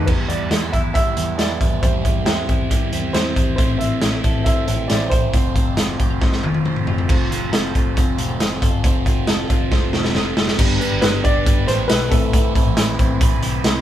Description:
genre	jangly indie pop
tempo	137 BPM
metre	4/4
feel	straight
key	unclear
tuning	A4 = 439 Hz
part	warm upright piano	melody	0.0-6.6, 11.0-12.9 s	G4 to E5	-25 LUFS	equal	slapback echo
part	overdriven electric guitar	accompaniment	0.0-13.8 s	A2 to B4	-25 LUFS	right 4 dB	phaser
part	soft electric-piano-like synth keys	accompaniment	0.0-0.1, 7.1-13.8 s	B3 to C5	-31 LUFS	left 3 dB	chorus
part	twelve-string electric guitar	arpeggios	0.0-13.8 s	G3 to B4	-27 LUFS	left 2 dB	none
part	vintage muted picked electric bass	bass	0.0-13.8 s	E1 to E2	-25 LUFS	equal	none
part	raw garage drum kit	drums	0.1-13.7 s	crash cymbal, hi-hat, kick drum, snare drum, toms	-18 LUFS	equal	none
room	moderate small room reverb, RT60 0.6 s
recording	band playing live in one room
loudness	-16 LUFS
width	side -11 dB against mid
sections	0.1-7.1 A section; 7.1-10.6 B section; 10.6-13.8 C section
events	drum fill 6.2-7.1, 9.7-10.6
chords	0.1 Em; 1.8 C/E; 3.6 Am; 5.3 F; 10.6 G; 12.1 Amadd9

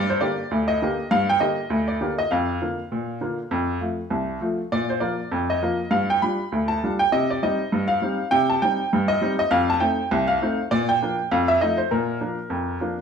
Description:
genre	ragtime piano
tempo	100 BPM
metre	2/4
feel	swing 56% on 16ths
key	Bb major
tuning	A4 = 441 Hz
part	clear upright piano	solo	0.0-13.0 s	C2 to Cb6	-20 LUFS	equal	none
room	wet large studio reverb, RT60 1.0 s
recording	band playing live in one room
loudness	-20 LUFS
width	side -6 dB against mid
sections	0.0-13.0 A section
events	none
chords	0.0 Gm; 2.3 Bb/F; 3.5 F; 4.7 Bb5; 5.9 G5; 7.1 Cm; 9.5 F7; 10.7 Bb; 11.3 F7; 11.9 Bb

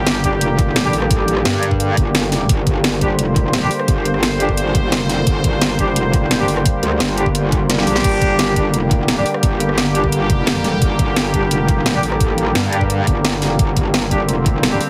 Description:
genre	dark technical drum and bass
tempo	173 BPM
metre	4/4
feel	straight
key	G minor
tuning	A4 = 440 Hz
part	sweeping resonant pad	sustained chords	0.0-14.9 s	D3 to C5	-23 LUFS	equal	chorus, sidechain pumping
part	metallic wobble bass	bass	0.0-14.8 s	F1 to G2	-22 LUFS	equal	distortion, chorus, tube saturation
part	drum and bass drum kit	drums	0.1-14.9 s	crash cymbal, hi-hat, rim click, snare drum	-22 LUFS	equal	overdrive
part	warm brass ensemble	stabs	0.2-0.9, 3.0-14.8 s	G3 to G4	-24 LUFS	equal	delay
part	electronic kick drum	drums	0.2-14.5 s	none	-20 LUFS	equal	none
room	moderate digital room reverb, RT60 1.0 s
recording	heavily compressed radio sound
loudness	-16 LUFS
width	mono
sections	0.0-14.9 A section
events	kick drops out 7.7-8.0; drum fill 7.7-8.0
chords	0.0 Gm

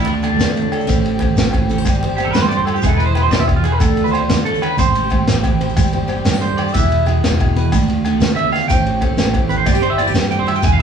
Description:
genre	highlife guitar band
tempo	123 BPM (dotted quarters)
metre	12/8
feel	straight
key	A minor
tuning	A4 = 439 Hz
part	picked acoustic archtop guitar	accompaniment	0.0-10.8 s	A2 to C5	-23 LUFS	left 1 dB	none
part	electric guitar at the edge of break-up	arpeggios	0.0-10.8 s	D4 to G#5	-19 LUFS	right 3 dB	phaser
part	fingered electric bass	bass	0.0-10.8 s	E1 to D3	-19 LUFS	right 1 dB	none
part	congas	percussion	0.0-10.7 s	none	-24 LUFS	right 6 dB	none
part	crunchy breakbeat drum kit	drums	0.1-10.7 s	kick drum, ride cymbal, snare drum	-19 LUFS	equal	none
part	agogo bells	percussion	0.2-10.6 s	none	-29 LUFS	left 3 dB	none
part	shekere	percussion	0.2-10.7 s	none	-24 LUFS	left 2 dB	none
room	moderate studio reverb, RT60 0.8 s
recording	band playing live in one room, small room reverb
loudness	-13 LUFS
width	side -7 dB against mid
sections	0.0-10.8 A section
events	clean electric guitar solo 0.0-10.8; drum fill 5.0-5.8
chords	0.0 Dm; 0.9 Am7; 1.9 Gsus4; 2.8 E; 3.8 Dm; 4.8 Am7; 5.8 Gsus4; 6.7 E; 7.7 Dm; 8.7 Am7; 9.7 Gsus4

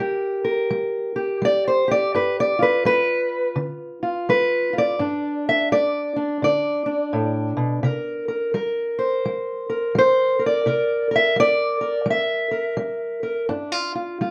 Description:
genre	acoustic country blues, solo or duo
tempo	84 BPM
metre	4/4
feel	swing 62% on 8ths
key	unclear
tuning	A4 = 439 Hz
part	fingerpicked steel-string acoustic guitar	solo	0.0-14.3 s	G2 to E5	-22 LUFS	equal	none
room	wet studio reverb, RT60 0.6 s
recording	dark, warm production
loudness	-22 LUFS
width	mono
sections	0.0-14.3 A section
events	steel-string acoustic guitar solo 0.0-14.3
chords	0.0 N.C.; 2.1 G7; 7.8 C7; 13.5 G7(no3)

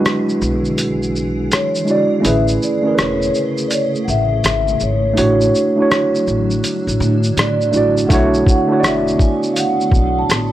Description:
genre	lo-fi hip hop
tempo	82 BPM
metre	4/4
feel	swing 64% on 16ths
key	unclear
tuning	A4 = 442 Hz
part	vibraphone with soft mallets	melody	0.0-10.5 s	B4 to A5	-20 LUFS	equal	low-pass filter
part	mellow tine electric piano	accompaniment	0.0-10.5 s	F#3 to D5	-17 LUFS	right 2 dB	cassette tape, low-pass filter
part	granular cloud pad	sustained chords	0.0-10.5 s	C#3 to G#4	-26 LUFS	equal	built-in reverb, low-pass filter
part	lo-fi sampler-style drum kit	drums	0.1-10.5 s	hi-hat, kick drum, rim click, shaker	-18 LUFS	equal	none
part	upright bass	bass	0.4-10.5 s	E1 to A2	-20 LUFS	equal	none
room	little or no reverb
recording	dry, gritty hardware recording, vinyl crackle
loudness	-13 LUFS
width	side -13 dB against mid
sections	0.0-10.5 A section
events	break 0.0-8.1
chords	0.0 E9/B; 2.2 Amaj7; 5.2 Dmaj9/A; 8.1 Bm11

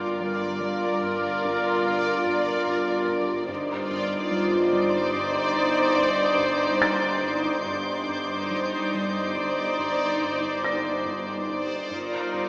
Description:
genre	cinematic, suspense film score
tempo	72 BPM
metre	5/4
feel	straight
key	unclear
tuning	A4 = 441 Hz
part	clear studio violin section	melody	0.0-12.5 s	D5	-32 LUFS	equal	none
part	dark studio violin section	second line	0.0-12.5 s	Bb4 to C5	-33 LUFS	equal	none
part	warm studio viola section	accompaniment	0.0-12.5 s	Eb4 to F4	-32 LUFS	equal	none
part	backwards swelling texture	sustained chords	0.0-12.5 s	Eb4 to D5	-32 LUFS	equal	built-in reverb
part	rubbery square bass	riff	0.0-12.5 s	G2 to G3	-41 LUFS	equal	none
part	dark studio double bass section	bass	0.0-12.5 s	G1	-44 LUFS	equal	none
part	warm studio cello section	bass	0.0-12.5 s	G2	-37 LUFS	equal	none
part	swarming drone	drone	0.1-12.5 s	G1	-43 LUFS	equal	none
part	felt-muted upright piano	texture	0.0-12.5 s	G6 to Bb6	-35 LUFS	equal	none
part	rich studio violin section	texture	0.0-12.5 s	Bb5 to G6	-37 LUFS	equal	none
room	wet scoring stage reverb, RT60 1.5 s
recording	small speaker sound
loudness	-25 LUFS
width	mono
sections	0.0-12.5 A section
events	none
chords	0.0 Gm7; 3.5 Cmadd9/G; 11.9 Gm7

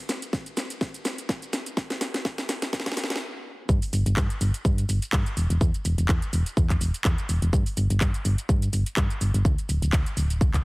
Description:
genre	piano house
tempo	125 BPM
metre	4/4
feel	swing 55% on 16ths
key	unclear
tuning	A4 = 441 Hz
part	house drum kit	drums	0.1-10.6 s	handclaps, hi-hat, shaker, snare drum	-30 LUFS	equal	none
part	electronic kick drum	drums	0.3-10.6 s	none	-23 LUFS	equal	none
part	solid FM bass	bass	3.7-10.6 s	D1 to G2	-24 LUFS	equal	sidechain pumping
room	little or no reverb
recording	heavily compressed radio sound, multiband compression, high-pass filter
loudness	-23 LUFS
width	side -25 dB against mid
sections	0.0-3.7 A section; 3.7-10.6 B section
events	build-up 0.0-3.7; drum fill 0.0-3.2; stop 3.2-3.7; drop 3.7-10.6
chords	none

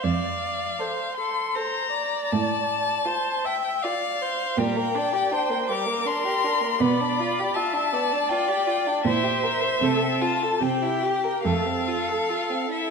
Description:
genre	classical, slow romantic movement for string quartet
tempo	79 BPM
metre	3/4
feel	rubato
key	F major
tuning	A4 = 439 Hz
part	rich violin	melody	0.0-12.9 s	E5 to D6	-26 LUFS	left 7 dB	none
part	clear viola	accompaniment	0.0-12.9 s	F4 to E5	-28 LUFS	right 4 dB	none
part	rich cello	bass	0.0-12.1 s	F2 to C3	-27 LUFS	right 5 dB	none
part	warm violin	second line	0.8-12.9 s	G3 to C5	-28 LUFS	left 1 dB	none
room	wet scoring stage reverb, RT60 1.7 s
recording	none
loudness	-22 LUFS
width	side -5 dB against mid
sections	0.0-12.9 A section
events	none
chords	0.0 F; 2.3 F/A; 4.6 Gm/Bb; 6.8 G7/B; 9.1 C7/Bb; 9.8 F/C; 10.6 C7; 11.5 F

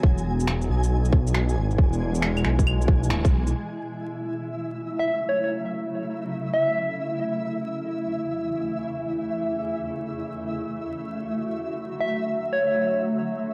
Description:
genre	future garage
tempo	137 BPM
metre	4/4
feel	swing 67% on 16ths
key	F# minor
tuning	A4 = 441 Hz
part	granular cloud pad	sustained chords	0.0-13.5 s	E2 to G#4	-32 LUFS	equal	built-in reverb, sidechain pumping, cassette tape
part	swelling detuned saw bass	bass	0.0-3.5 s	D1 to B1	-26 LUFS	equal	tube saturation, sidechain pumping
part	electronic kick drum	drums	0.0-3.3 s	none	-21 LUFS	equal	overdrive, cassette tape
part	flickering grainy texture	texture	0.0-13.5 s	E5 to G#5	-37 LUFS	equal	built-in reverb, cassette tape
part	electronic shaker, finger snaps and claves	drums	0.2-3.5 s	none	-33 LUFS	equal	overdrive, low-pass filter on perc, cassette tape, low-pass filter on snare, low-pass filter on room
part	soft struck synth lead	melody	5.0-7.0, 12.0-13.0 s	C#5 to E5	-28 LUFS	equal	chorus, cassette tape, analog delay
room	moderate spring reverb, RT60 2.2 s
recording	home recording on cassette, vinyl crackle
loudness	-26 LUFS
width	mono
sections	0.0-3.5 A section; 3.5-13.5 B section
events	band accent 3.1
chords	0.0 E; 3.5 F#m7; 7.0 A/E; 10.5 D

